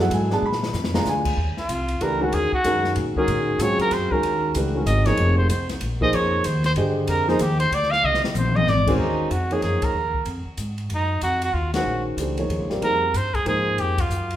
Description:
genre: modal jazz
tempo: 189 BPM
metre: 3/4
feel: swing 62% on 8ths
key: Eb dorian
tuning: A4 = 439 Hz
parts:
  - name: warm grand piano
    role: accompaniment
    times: 0.0-13.9 s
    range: Db3 to B5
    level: -24 LUFS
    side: equal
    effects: none
  - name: upright bass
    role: bass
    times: 0.0-14.4 s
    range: F1 to A#2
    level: -25 LUFS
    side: equal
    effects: none
  - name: open jazz drum kit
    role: drums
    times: 0.1-14.4 s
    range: crash cymbal, hi-hat, kick drum, ride cymbal, snare drum, toms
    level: -30 LUFS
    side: left 2 dB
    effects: none
  - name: warm trumpet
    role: melody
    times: 1.6-14.4 s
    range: Eb4 to F5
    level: -23 LUFS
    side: right 1 dB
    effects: none
room: wet large studio reverb, RT60 1.2 s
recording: band playing live in one room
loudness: -19 LUFS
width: side -12 dB against mid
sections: 0.0-1.4 A section; 1.4-9.0 A section; 9.0-14.4 B section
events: drum fill 0.4-1.1, 8.0-8.7; trumpet solo 1.4-9.0; band accent 9.8, 11.7, 13.9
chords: 0.4 A#7b9; 1.4 Ebm11; 5.2 Fm11; 9.0 Ebm11; 12.8 Fm11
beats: 0.11 | 0.43 0.74 1.06 | 1.38 1.69 2.01 | 2.33 2.64 2.96 | 3.28 3.60 3.91 | 4.23 4.54 4.86 | 5.18 5.50 5.81 | 6.13 6.45 6.76 | 7.08 7.40 7.72 | 8.03 8.35 8.67 | 8.99 9.31 9.62 | 9.94 10.26 10.58 | 10.90 11.22 11.54 | 11.86 12.18 12.49 | 12.81 13.13 13.45 | 13.77 14.09

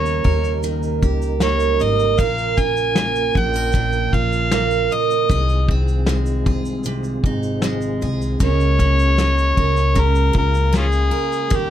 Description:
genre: acoustic pop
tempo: 77 BPM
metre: 4/4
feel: straight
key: unclear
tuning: A4 = 436 Hz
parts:
  - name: overdriven harmonica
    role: melody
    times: 0.0-11.7 s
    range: Db4 to Ab5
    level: -21 LUFS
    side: left 3 dB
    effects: none
  - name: picked steel-string acoustic guitar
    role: accompaniment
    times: 0.0-11.7 s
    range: Bb2 to Bb4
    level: -22 LUFS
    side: right 8 dB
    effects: none
  - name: tonewheel organ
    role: sustained chords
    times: 0.0-11.7 s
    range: Db3 to Bb4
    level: -30 LUFS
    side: left 4 dB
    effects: chorus vibrato, slow rotary speaker
  - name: upright bass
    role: bass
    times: 0.0-11.7 s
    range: Ab1 to Eb2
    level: -20 LUFS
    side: left 1 dB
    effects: none
  - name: vintage brush drum kit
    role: drums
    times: 0.1-11.7 s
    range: kick drum, shaker, snare drum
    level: -21 LUFS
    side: left 1 dB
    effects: none
room: light reverb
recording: close, detailed microphones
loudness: -16 LUFS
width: side -10 dB against mid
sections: 0.0-11.7 A section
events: none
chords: 0.0 Eb7; 2.2 Bbm; 5.3 Fm7/C; 8.4 Db6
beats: 0.63 1.41 | 2.19 2.96 3.74 4.52 | 5.30 6.07 6.85 7.63 | 8.40 9.18 9.96 10.74 | 11.51

